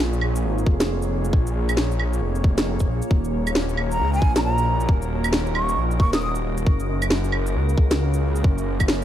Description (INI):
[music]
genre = future garage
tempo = 135 BPM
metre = 4/4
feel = swing 63% on 16ths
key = Bb minor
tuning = A4 = 440 Hz
[part]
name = deep dark ambient pad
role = sustained chords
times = 0.0-9.0 s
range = Bb3 to Db5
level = -29 LUFS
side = equal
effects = chorus, built-in reverb, vintage 12-bit sampler grit, sidechain pumping
[part]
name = swelling detuned saw bass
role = bass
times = 0.0-9.0 s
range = Eb1 to Db2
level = -23 LUFS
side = equal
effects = sidechain pumping
[part]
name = electronic shaker, claves and snare drum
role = drums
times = 0.1-9.0 s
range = none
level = -24 LUFS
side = equal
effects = overdrive
[part]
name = electronic kick drum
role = drums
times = 0.7-8.9 s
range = none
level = -19 LUFS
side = equal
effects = none
[part]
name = drifting glass-harmonics texture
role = texture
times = 3.6-9.0 s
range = Bb4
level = -36 LUFS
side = right 3 dB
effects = chorus, built-in reverb
[part]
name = breathy hollow jazz flute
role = melody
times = 3.9-6.3 s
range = Ab5 to Eb6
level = -27 LUFS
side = right 1 dB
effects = digital delay
[sound]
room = little or no reverb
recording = none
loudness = -19 LUFS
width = side -11 dB against mid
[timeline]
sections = 0.0-9.0 A section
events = none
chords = 0.0 Bbm7; 3.1 Ebm7; 6.7 Gb